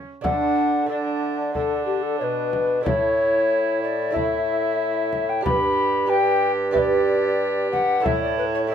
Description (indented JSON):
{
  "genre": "classical, renaissance-style consort dance",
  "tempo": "92 BPM",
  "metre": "4/4",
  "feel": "straight",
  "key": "unclear",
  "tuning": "A4 = 440 Hz",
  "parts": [
    { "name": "rich viola", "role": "second line", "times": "0.0-8.7 s", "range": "D4 to G4", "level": "-28 LUFS", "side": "right 4 dB", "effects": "none" },
    { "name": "lute", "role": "accompaniment", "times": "0.0-8.7 s", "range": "G2 to B4", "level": "-28 LUFS", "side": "right 6 dB", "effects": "none" },
    { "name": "mellow hollow tenor recorder", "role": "melody", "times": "0.2-8.7 s", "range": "G4 to B5", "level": "-22 LUFS", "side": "left 4 dB", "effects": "none" },
    { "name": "warm bassoon", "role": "bass", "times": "0.2-8.7 s", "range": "G2 to D3", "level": "-25 LUFS", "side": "right 2 dB", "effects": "none" },
    { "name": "frame drum", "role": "percussion", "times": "0.2-8.4 s", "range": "none", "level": "-29 LUFS", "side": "left 1 dB", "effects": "none" }
  ],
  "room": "light reverb",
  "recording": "minimal, uncompressed stereo recording",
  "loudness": "-19 LUFS",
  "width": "side -8 dB against mid",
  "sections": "0.3-8.7 A section",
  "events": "none",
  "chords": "0.3 D; 2.9 A; 5.5 G; 8.1 Asus4"
}